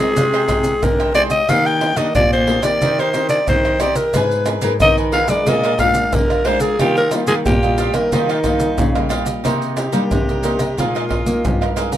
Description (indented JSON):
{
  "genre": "samba and choro",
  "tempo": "90 BPM",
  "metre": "4/4",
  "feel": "straight",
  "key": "Eb major",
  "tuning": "A4 = 445 Hz",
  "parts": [
    { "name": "growling alto saxophone", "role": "melody", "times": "0.0-11.8 s", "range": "Eb4 to G5", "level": "-18 LUFS", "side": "equal", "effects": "none" },
    { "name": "cavaquinho", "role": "accompaniment", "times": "0.0-12.0 s", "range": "D4 to Ab5", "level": "-24 LUFS", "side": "right 6 dB", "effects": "none" },
    { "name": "nylon-string guitar", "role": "accompaniment", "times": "0.0-12.0 s", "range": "F2 to Bb4", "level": "-25 LUFS", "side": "left 5 dB", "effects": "none" },
    { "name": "nylon-string guitar", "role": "bass", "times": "0.0-12.0 s", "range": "G2 to C4", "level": "-22 LUFS", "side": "equal", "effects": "none" },
    { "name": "maracas, surdo, pandeiro and tamborim", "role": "percussion", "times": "0.2-12.0 s", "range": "none", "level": "-20 LUFS", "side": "equal", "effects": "none" }
  ],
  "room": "moderate studio reverb, RT60 0.5 s",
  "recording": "minimal, uncompressed stereo recording",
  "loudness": "-14 LUFS",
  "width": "side -12 dB against mid",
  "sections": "0.0-9.5 A section; 9.5-12.0 B section",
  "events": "alto saxophone solo 9.5-12.0",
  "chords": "0.2 Abmaj7/C; 1.5 Ebmaj7; 2.8 Cm/Eb; 4.1 Abmadd9; 5.5 Bb7; 6.8 Ebadd9; 9.5 Cm9; 10.8 Bb7sus4"
}